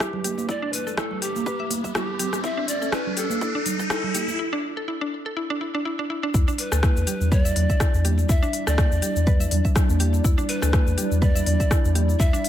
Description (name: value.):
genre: afro house.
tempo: 123 BPM.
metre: 4/4.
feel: swing 56% on 16ths.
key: E minor.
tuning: A4 = 440 Hz.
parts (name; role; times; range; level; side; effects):
breathy bright large pan pipes; melody; 0.0-12.5 s; G4 to E5; -30 LUFS; equal; low-pass filter, ping-pong delay.
dark analog pad; sustained chords; 0.1-12.5 s; G3 to D5; -33 LUFS; equal; chorus, sidechain pumping.
mallet-like synth pluck; arpeggios; 0.0-12.4 s; D4 to E5; -31 LUFS; equal; chorus, sidechain pumping, ping-pong delay.
afro-pop drum kit; drums; 0.0-12.5 s; hi-hat, rim click, shaker; -29 LUFS; left 2 dB; none.
electronic kick drum; drums; 0.0-12.3 s; none; -21 LUFS; equal; overdrive, high-pass filter on kick.
congas; percussion; 0.0-12.2 s; none; -31 LUFS; right 7 dB; none.
riser; sound effects; 0.2-4.4 s; none; -30 LUFS; equal; none.
round analog bass; bass; 6.3-12.3 s; D2 to E2; -22 LUFS; equal; sidechain pumping.
room: light reverb.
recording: none.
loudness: -20 LUFS.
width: side -11 dB against mid.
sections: 0.0-6.3 A section; 6.3-12.5 B section.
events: build-up 0.0-6.3; riser 0.2-4.4; break 4.4-6.3; drop 6.3-12.5.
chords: 0.0 Em7.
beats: 0.00 | 0.49 0.98 1.46 1.95 | 2.44 2.93 3.42 3.90 | 4.39 4.88 5.37 5.85 | 6.34 6.83 7.32 7.80 | 8.29 8.78 9.27 9.76 | 10.24 10.73 11.22 11.71 | 12.20.